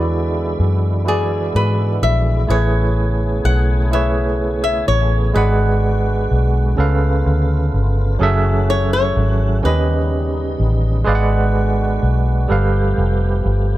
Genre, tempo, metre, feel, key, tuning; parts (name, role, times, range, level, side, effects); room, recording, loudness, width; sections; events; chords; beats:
slow six-eight R&B; 42 BPM (dotted quarters); 6/8; straight; A4 = 443 Hz
flamenco guitar; melody; 0.0-12.9 s; G#4 to F#5; -23 LUFS; left 3 dB
barky tine electric piano; accompaniment; 0.0-13.8 s; C#3 to F#5; -20 LUFS; right 3 dB; overdrive, fast tremolo
tonewheel organ; sustained chords; 0.0-13.8 s; C#3 to G#4; -28 LUFS; equal; overdrive, chorus vibrato, slow rotary speaker
vintage muted fingered electric bass; bass; 0.0-13.8 s; F1 to G#2; -16 LUFS; equal
light reverb; -14 LUFS; side -15 dB against mid
0.0-13.8 A section
0.0 E7; 2.5 Amaj9; 5.3 G#m7b5; 6.8 C#7b13; 8.2 F#m9; 9.6 D#7b13; 11.1 G#m7b5; 12.5 G9
1.06 | 2.48 3.91 | 5.34 6.77 | 8.20 9.63 | 11.06 12.48